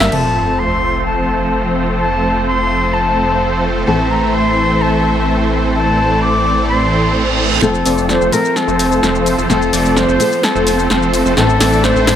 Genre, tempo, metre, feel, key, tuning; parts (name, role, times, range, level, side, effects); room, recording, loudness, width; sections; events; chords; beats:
EDM, festival progressive house; 128 BPM; 4/4; straight; F major; A4 = 437 Hz
fingerpicked steel-string acoustic guitar; accompaniment; 0.0-12.2 s; A2 to A4; -20 LUFS; left 4 dB
bright symphonic string section; sustained chords; 0.0-12.2 s; F3 to E5; -24 LUFS; left 1 dB
supersaw chords; riff; 0.0-12.1 s; E3 to E5; -17 LUFS; right 1 dB; low-pass filter, digital delay
wide detuned saw bass; bass; 0.0-12.2 s; F1 to A1; -21 LUFS; equal; chorus
big-room dance drum kit; drums; 0.0-0.2, 7.6-12.2 s; crash cymbal, hi-hat, shaker, snare drum; -19 LUFS; equal
reedy silver concert flute; melody; 0.1-12.2 s; A4 to D6; -17 LUFS; left 1 dB; digital delay
sub drop, reverse cymbal and riser; sound effects; 0.1-2.0, 6.9-12.2 s; -24 LUFS; right 2 dB
moderate lush hall reverb, RT60 1.6 s, small room ambience; -12 LUFS; side -9 dB against mid
0.1-7.6 A section; 7.6-12.2 B section
impact 0.1-2.0; reverse cymbal 6.9-7.6; build-up 7.6-12.2; drum fill 7.6-12.2; filter sweep on supersaw synth 7.6-12.2
0.1 F; 3.9 Am; 7.6 F; 11.4 Am
| 0.12 0.59 1.06 1.53 | 2.00 2.46 2.93 3.40 | 3.87 4.34 4.81 5.28 | 5.75 6.21 6.68 7.15 | 7.62 8.09 8.56 9.03 | 9.50 9.96 10.43 10.90 | 11.37 11.84